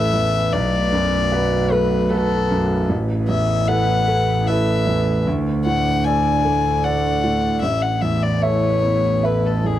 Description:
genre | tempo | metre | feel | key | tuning
neoclassical piano and strings | 76 BPM | 3/4 | rubato | unclear | A4 = 440 Hz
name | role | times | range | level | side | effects
rich violin | melody | 0.0-9.8 s | G#4 to G#5 | -21 LUFS | left 5 dB | none
clear concert grand piano | accompaniment | 0.0-9.8 s | A1 to E5 | -21 LUFS | right 2 dB | none
airy breathy pad | sustained chords | 0.0-9.8 s | A3 to D5 | -27 LUFS | right 3 dB | chorus
rich double bass | bass | 0.0-9.8 s | A1 to D2 | -22 LUFS | equal | none
room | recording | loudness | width
light reverb | none | -16 LUFS | side -12 dB against mid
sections
0.0-9.8 A section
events
none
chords
0.0 Asus2; 0.5 Bm7; 2.9 Asus2; 5.3 D; 7.6 Asus2

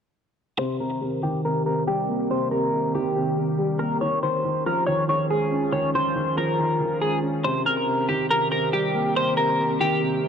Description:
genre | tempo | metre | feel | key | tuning
hip hop | 140 BPM | 4/4 | half-time | C phrygian | A4 = 440 Hz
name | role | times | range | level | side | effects
clean electric guitar | melody | 0.6-10.3 s | G4 to Db5 | -23 LUFS | equal | analog chorus, low-pass filter, analog delay
dark grand piano | accompaniment | 0.6-10.3 s | C3 to Db4 | -27 LUFS | left 1 dB | low-pass filter
glassy FM pad | sustained chords | 0.9-10.3 s | Eb3 to Bb4 | -28 LUFS | right 2 dB | ensemble chorus, built-in reverb, low-pass filter
room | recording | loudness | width
light reverb, small room ambience | dry, gritty hardware recording | -21 LUFS | side -7 dB against mid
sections
0.6-10.3 A section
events
filter sweep 0.6-10.3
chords
0.6 Cm7; 4.0 Dbadd9; 7.4 Cm7

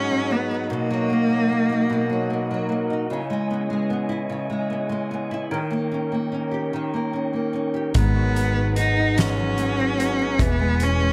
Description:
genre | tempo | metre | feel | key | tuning
six-eight pop ballad | 50 BPM (dotted quarters) | 6/8 | straight | G# minor | A4 = 439 Hz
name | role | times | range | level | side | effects
clear cello | melody | 0.0-2.7, 8.0-11.1 s | A#3 to D#4 | -25 LUFS | equal | none
nylon-string guitar | accompaniment | 0.0-11.1 s | G#2 to G4 | -28 LUFS | equal | double-tracked
percussive tonewheel organ | sustained chords | 0.0-11.1 s | E3 to G#5 | -32 LUFS | equal | fast rotary speaker
soft-mallet drum kit | drums | 7.9-11.0 s | hi-hat, kick drum, snare drum | -26 LUFS | equal | none
hollow-body short-scale fingered electric bass | bass | 8.0-11.1 s | E1 to G#1 | -26 LUFS | equal | none
room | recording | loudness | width
light reverb, small room ambience | none | -23 LUFS | mono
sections
0.0-11.1 A section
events
none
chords
0.0 G#m7; 0.7 Bmaj7; 3.1 C#m7; 5.5 D#7; 8.0 G#m7; 10.4 E

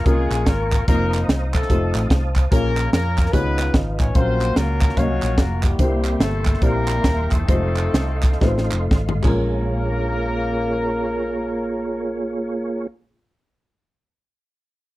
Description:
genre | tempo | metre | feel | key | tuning
uptempo gospel | 110-146 BPM | 4/4 | swing 63% on 8ths | Bb minor | A4 = 439 Hz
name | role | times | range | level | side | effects
warm horn section | melody | 0.0-12.9 s | G3 to Db5 | -26 LUFS | left 2 dB | none
percussive tonewheel organ | sustained chords | 0.0-12.9 s | Bb3 to Eb6 | -28 LUFS | right 2 dB | fast rotary speaker, chorus vibrato
dark upright piano | accompaniment | 0.1-12.9 s | Bb1 to F5 | -26 LUFS | left 2 dB | none
hollow-body short-scale fingered electric bass | bass | 0.1-12.9 s | Eb1 to F2 | -23 LUFS | equal | none
crisp fusion drum kit | drums | 0.1-9.3 s | crash cymbal, hi-hat, kick drum, snare drum, toms | -19 LUFS | equal | none
group handclap | percussion | 0.3-9.7 s | none | -32 LUFS | right 5 dB | none
room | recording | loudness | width
little or no reverb | dry, close 1970s-style studio recording | -18 LUFS | side -17 dB against mid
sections
0.0-9.4 A section; 9.4-13.8 B section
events
slowing down 5.8-9.4; drum fill 8.4-9.4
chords
0.0 Bbm7; 0.9 F7sus4; 1.7 F7; 2.5 Bbm7; 3.3 Db9; 4.2 Gbmaj7/Bb; 5.8 C7; 7.5 F7; 9.2 Bbm7

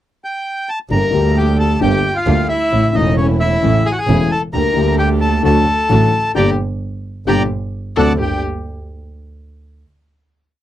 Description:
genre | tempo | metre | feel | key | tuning
tango | 132 BPM | 4/4 | rubato | G minor | A4 = 440 Hz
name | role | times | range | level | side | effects
bandoneon | melody | 0.2-8.4 s | C#5 to Bb5 | -19 LUFS | equal | none
warm violin | second line | 0.9-8.4 s | C#4 to Bb4 | -22 LUFS | left 3 dB | none
warm concert grand piano | accompaniment | 0.9-8.4 s | E1 to G4 | -19 LUFS | left 5 dB | none
dark studio string section | stabs | 0.9-8.4 s | A3 to G4 | -25 LUFS | right 5 dB | none
clear double bass | bass | 0.9-8.4 s | E1 to D2 | -17 LUFS | right 2 dB | none
room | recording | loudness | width
light reverb | dry, close 1970s-style studio recording | -13 LUFS | side -12 dB against mid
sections
0.0-0.9 pickup bar; 0.9-8.2 A section; 8.2-10.0 final chord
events
band accent 6.4-8.2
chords
0.0 N.C.; 0.9 Gm; 2.7 A; 4.5 Gm/D; 5.4 D; 6.4 Gm; 7.7 D7; 8.2 Gm

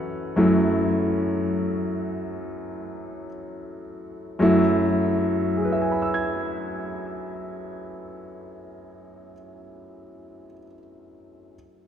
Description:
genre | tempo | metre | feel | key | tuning
solo jazz | 52-68 BPM | 4/4 | swing 67% on 8ths | F# minor | A4 = 439 Hz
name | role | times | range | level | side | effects
clear concert grand piano | solo | 0.0-11.6 s | F#2 to G#6 | -23 LUFS | equal | none
room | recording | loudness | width
wet cathedral reverb, RT60 5.1 s | in a vast, echoing space | -21 LUFS | side -9 dB against mid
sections
0.0-4.4 A section; 4.4-9.0 B section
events
slowing down 0.0-4.4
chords
0.0 F#m7

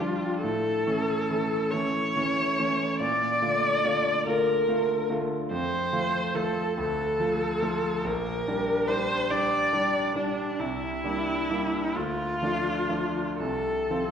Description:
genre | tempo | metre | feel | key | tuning
classical, romantic duo for viola and grand piano | 39-49 BPM (dotted quarters) | 6/8 | rubato | F major from 5.5 s | A4 = 440 Hz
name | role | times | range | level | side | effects
rich viola | melody | 0.0-14.1 s | D4 to D5 | -26 LUFS | left 1 dB | none
clear concert grand piano | accompaniment | 0.0-14.1 s | Bb1 to F4 | -29 LUFS | right 1 dB | none
room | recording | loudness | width
wet scoring stage reverb, RT60 1.4 s | heard from further back in the room | -24 LUFS | side -8 dB against mid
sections
0.0-14.1 A section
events
none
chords
0.4 A; 3.0 Bbmaj7; 5.5 F; 6.8 Dm; 8.0 Gm/Bb; 10.6 C9; 12.0 Dm; 13.4 F/C

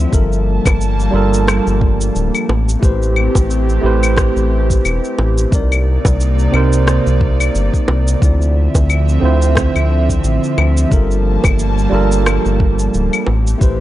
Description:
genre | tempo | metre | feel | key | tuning
sunset chillout | 89 BPM | 4/4 | swing 57% on 16ths | unclear | A4 = 435 Hz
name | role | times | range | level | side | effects
tine electric piano | accompaniment | 0.0-13.8 s | C3 to D5 | -20 LUFS | moving between left 4 dB and right 5 dB | auto-pan, vintage 12-bit sampler grit, analog delay
airy breathy pad | sustained chords | 0.0-13.8 s | C3 to A5 | -20 LUFS | equal | chorus, vintage 12-bit sampler grit
round analog bass | bass | 0.0-13.8 s | D1 to D2 | -15 LUFS | equal | none
electronic kick drum | drums | 0.1-13.8 s | none | -15 LUFS | equal | none
electronic shaker, claves and rim click | drums | 0.1-13.8 s | none | -21 LUFS | left 2 dB | none
bongos | percussion | 0.7-13.4 s | none | -23 LUFS | right 2 dB | none
room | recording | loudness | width
little or no reverb | dry, gritty hardware recording, nothing above 10.5 kHz | -12 LUFS | side -14 dB against mid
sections
0.0-13.8 A section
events
none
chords
0.1 Gm9; 2.5 Am9; 5.5 Cm9; 8.2 Dm9; 10.9 Gm9; 13.3 Am9

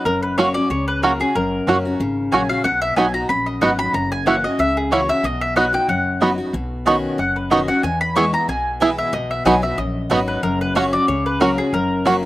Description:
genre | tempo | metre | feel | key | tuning
bluegrass | 185 BPM | 4/4 | swing 53% on 8ths | B major | A4 = 439 Hz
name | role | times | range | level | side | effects
mandolin | melody | 0.0-12.3 s | G#4 to C#6 | -21 LUFS | left 1 dB | none
picked steel-string acoustic guitar | accompaniment | 0.0-12.3 s | E2 to F#4 | -22 LUFS | left 2 dB | slapback echo
upright bass | bass | 0.1-12.2 s | F#1 to E2 | -28 LUFS | equal | none
bluegrass banjo | arpeggios | 0.4-12.1 s | B3 to G#4 | -19 LUFS | right 3 dB | slapback echo
mandolin | stabs | 0.4-12.2 s | A#3 to C#6 | -22 LUFS | right 2 dB | none
room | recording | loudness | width
light reverb | recorded outdoors, with no room sound | -16 LUFS | side -16 dB against mid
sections
0.0-6.5 A section; 6.5-12.3 A section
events
none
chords
0.1 F#; 2.6 B; 3.9 F#7; 5.2 B; 6.5 Badd9; 7.8 E; 9.1 B; 10.4 F#

